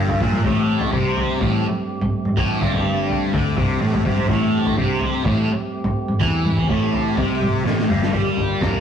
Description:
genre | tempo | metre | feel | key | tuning
psychedelic rock | 125 BPM | 4/4 | straight | unclear | A4 = 436 Hz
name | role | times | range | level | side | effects
percussive tonewheel organ | sustained chords | 0.0-8.8 s | A3 to A4 | -29 LUFS | right 2 dB | slow rotary speaker, overdrive
thick fuzz guitar | riff | 0.0-8.8 s | G2 to Bb4 | -20 LUFS | left 1 dB | distortion, phaser
picked electric bass | bass | 0.0-8.8 s | G1 to F2 | -25 LUFS | equal | none
analog drone | drone | 0.0-8.2 s | G2 | -30 LUFS | right 2 dB | none
cloth-damped thuddy drum kit | drums | 0.1-8.8 s | kick drum, snare drum, toms | -23 LUFS | equal | none
room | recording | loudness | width
moderate stone room reverb, RT60 1.3 s | rough rehearsal-room recording, warm saturation | -17 LUFS | side -8 dB against mid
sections
0.0-8.1 A section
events
drum fill 7.7-8.1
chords
0.5 Am7/G; 8.1 Gm7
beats
| 0.45 0.93 1.41 1.89 | 2.37 2.85 3.33 3.81 | 4.29 4.77 5.25 5.73 | 6.21 6.69 7.17 7.65 | 8.13 8.61

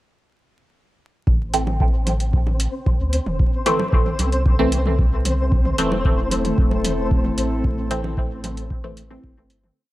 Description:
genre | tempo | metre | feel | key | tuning
dub techno | 113 BPM | 4/4 | straight | A minor | A4 = 442 Hz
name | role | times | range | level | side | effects
pure sine sub bass | bass | 1.3-9.7 s | E1 to D2 | -24 LUFS | equal | tube saturation, sidechain pumping
electronic kick drum | drums | 1.3-9.3 s | none | -19 LUFS | equal | none
electronic toms and congas | percussion | 1.3-9.7 s | none | -30 LUFS | right 1 dB | sidechain pumping on toms, sidechain pumping on perc, dub echo
flickering grainy texture | texture | 1.9-9.8 s | C4 to C5 | -29 LUFS | left 1 dB | built-in reverb, sidechain pumping
filtered dub chord stab | stabs | 1.5-9.8 s | E3 to C4 | -24 LUFS | equal | phaser, sidechain pumping, dub echo
electronic hi-hat | drums | 1.5-9.6 s | none | -29 LUFS | right 1 dB | none
warbly tape-like pad | sustained chords | 6.0-9.7 s | A3 to A4 | -26 LUFS | left 1 dB | chorus, built-in reverb, sidechain pumping
room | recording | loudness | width
little or no reverb | dry, gritty hardware recording, vinyl crackle | -18 LUFS | side -16 dB against mid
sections
1.3-9.8 groove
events
fade-out 6.9-9.8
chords
1.3 Am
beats
| 1.27 1.80 2.33 2.86 | 3.40 3.93 4.46 4.99 | 5.52 6.05 6.58 7.11 | 7.64 8.17 8.71 9.24

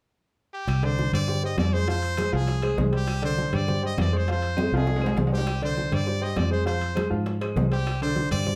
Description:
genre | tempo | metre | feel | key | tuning
latin, salsa | 200 BPM | 4/4 | straight | unclear | A4 = 440 Hz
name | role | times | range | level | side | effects
brilliant trumpet | melody | 0.5-8.6 s | G4 to Eb5 | -33 LUFS | equal | slapback echo, plate reverb
fingered electric bass | bass | 0.7-8.6 s | C2 to Ab2 | -28 LUFS | equal | none
bongos | percussion | 0.7-8.6 s | none | -38 LUFS | equal | none
claves | percussion | 0.7-8.5 s | none | -47 LUFS | equal | none
congas | percussion | 0.7-8.6 s | none | -34 LUFS | equal | none
timbales | percussion | 0.7-8.5 s | none | -36 LUFS | equal | none
clear concert grand piano | accompaniment | 0.8-8.6 s | D3 to F5 | -32 LUFS | equal | none
room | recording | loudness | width
wet studio ambience, RT60 0.5 s | heard from further back in the room | -25 LUFS | mono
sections
0.7-8.6 A section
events
drum fill 4.6-5.5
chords
0.0 N.C.; 0.7 Csus2; 1.9 Fm; 3.1 Csus2; 4.3 Fm; 5.5 Csus2; 6.7 Fm; 7.9 Csus2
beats
0.09 0.38 | 0.68 0.98 1.28 1.58 | 1.88 2.18 2.48 2.78 | 3.08 3.38 3.68 3.98 | 4.28 4.58 4.88 5.17 | 5.47 5.77 6.07 6.37 | 6.67 6.97 7.27 7.57 | 7.87 8.17 8.47

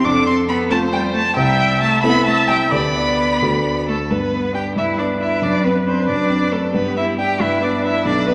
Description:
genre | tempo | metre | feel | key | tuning
quick classical-period movement for piano quartet | 91 BPM (dotted quarters) | 6/8 | straight | G major | A4 = 440 Hz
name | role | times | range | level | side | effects
clear violin | melody | 0.0-8.3 s | A4 to D6 | -23 LUFS | equal | none
clear cello | second line | 0.0-8.3 s | G3 to G4 | -24 LUFS | equal | none
clear viola | accompaniment | 0.0-8.3 s | G4 to E5 | -25 LUFS | equal | none
dark concert grand piano | accompaniment | 0.0-8.3 s | B1 to A4 | -23 LUFS | equal | none
room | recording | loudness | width
wet recital hall reverb, RT60 1.4 s | nothing above 10.6 kHz | -18 LUFS | mono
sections
0.0-4.1 A section; 4.1-8.3 B section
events
none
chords
0.0 F; 1.4 Am7/C; 2.7 G/D; 3.4 D; 4.1 G; 5.4 D7/F#; 6.7 G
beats
| 0.05 0.70 | 1.36 2.03 | 2.72 3.42 | 4.11 4.77 | 5.43 6.09 | 6.75 7.41 | 8.06

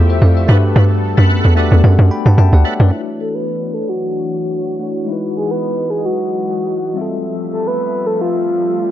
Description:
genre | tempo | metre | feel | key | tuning
amapiano | 111 BPM | 4/4 | swing 55% on 16ths | D major | A4 = 440 Hz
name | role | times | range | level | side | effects
bell-like tine electric piano | accompaniment | 0.0-8.9 s | G3 to B5 | -22 LUFS | left 4 dB | medium stereo tremolo, low-pass filter
lush unison pad | sustained chords | 0.0-8.9 s | E3 to E5 | -25 LUFS | left 1 dB | chorus, low-pass filter
hollow log drum bass | bass | 0.0-2.9 s | D2 to G2 | -9 LUFS | equal | none
overdriven tonewheel organ | stabs | 0.5-2.7 s | A4 to F#5 | -25 LUFS | right 2 dB | chorus vibrato, slow rotary speaker, ping-pong delay
breathy flute-like synth lead | melody | 3.2-8.9 s | F4 to B4 | -19 LUFS | equal | chorus, low-pass filter, ping-pong delay
room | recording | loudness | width
light reverb | dark, warm production | -13 LUFS | side -12 dB against mid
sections
0.0-2.9 A section; 2.9-8.9 B section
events
drop 0.0-2.9; tine electric piano fill 1.3-2.9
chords
0.5 Gmaj9; 2.9 Dmaj9; 5.1 Emaj9; 7.0 Fmaj9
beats
0.22 | 0.76 1.30 1.84 2.38 | 2.92 3.46 4.00 4.54 | 5.08 5.62 6.16 6.70 | 7.24 7.79 8.32 8.87

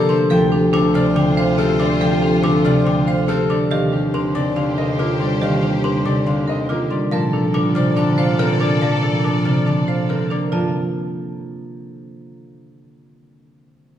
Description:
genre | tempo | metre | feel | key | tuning
classical, minimalist pattern music | 141 BPM | 4/4 | straight | G minor | A4 = 440 Hz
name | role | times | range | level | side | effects
clear concert grand piano | melody | 0.0-10.7 s | G4 to A5 | -24 LUFS | left 5 dB | none
concert harp | accompaniment | 0.0-12.2 s | C3 to C4 | -19 LUFS | right 1 dB | none
rich symphonic violin section | sustained chords | 0.0-10.3 s | F4 to D5 | -29 LUFS | left 4 dB | none
marimba with medium hard mallets | arpeggios | 0.0-10.7 s | D4 to C5 | -22 LUFS | right 2 dB | none
trough xylophone with soft rubber mallets | arpeggios | 0.0-10.7 s | Eb5 to F6 | -30 LUFS | left 3 dB | none
clear bass clarinet | bass | 0.0-10.7 s | D2 to Bb2 | -27 LUFS | left 1 dB | none
room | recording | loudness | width
wet recital hall reverb, RT60 1.7 s | heard from further back in the room | -15 LUFS | side -10 dB against mid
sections
0.0-10.5 A section; 10.5-12.2 B section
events
none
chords
0.3 Dm7; 3.7 Eb69; 7.1 Bbmaj7; 10.5 Gm7 (rootless)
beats
| 0.31 0.74 1.17 1.59 | 2.02 2.44 2.87 3.29 | 3.72 4.14 4.57 5.00 | 5.42 5.85 6.27 6.70 | 7.12 7.55 7.97 8.40 | 8.82 9.25 9.68 10.10 | 10.53 10.95 11.38 11.80

